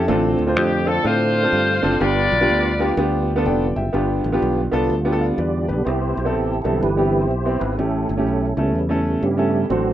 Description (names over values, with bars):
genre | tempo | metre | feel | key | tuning
gospel | 125 BPM | 4/4 | swing 64% on 8ths | C major | A4 = 440 Hz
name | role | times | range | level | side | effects
clear baby grand piano | accompaniment | 0.0-9.9 s | G2 to G5 | -21 LUFS | equal | none
tonewheel organ | sustained chords | 0.0-9.9 s | C#3 to D5 | -24 LUFS | right 2 dB | chorus vibrato, slow rotary speaker
fingered electric bass | bass | 0.0-9.9 s | F1 to A2 | -23 LUFS | left 1 dB | none
edgy saxophone section | melody | 0.6-3.0 s | F4 to D5 | -19 LUFS | left 2 dB | none
room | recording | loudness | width
light reverb | rough home demo mix | -17 LUFS | side -12 dB against mid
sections
0.0-3.9 A section; 3.9-5.9 B section; 5.9-9.9 C section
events
grand piano fill 3.2-3.9; tonewheel organ solo 5.9-9.9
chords
0.1 Dm7/A; 2.0 G7; 5.9 Cmaj7; 7.8 A7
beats
| 0.09 0.57 1.05 1.53 | 2.01 2.49 2.97 3.46 | 3.94 4.42 4.90 5.38 | 5.86 6.34 6.83 7.30 | 7.79 8.27 8.74 9.22 | 9.70